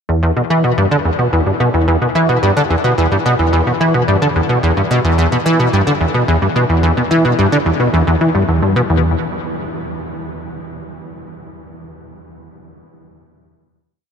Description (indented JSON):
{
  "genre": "ambient",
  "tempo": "109 BPM",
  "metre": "4/4",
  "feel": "straight",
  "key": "E minor",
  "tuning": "A4 = 440 Hz",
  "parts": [
    { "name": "plucky analog bass", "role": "solo", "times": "0.1-9.2 s", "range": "E2 to E3", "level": "-13 LUFS", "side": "equal", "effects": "analog chorus, ping-pong delay" }
  ],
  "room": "wet huge ambient reverb, RT60 9.3 s",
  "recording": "none",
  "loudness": "-12 LUFS",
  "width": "side -7 dB against mid",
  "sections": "0.1-8.9 A section; 8.9-11.1 final chord",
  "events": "none",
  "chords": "none"
}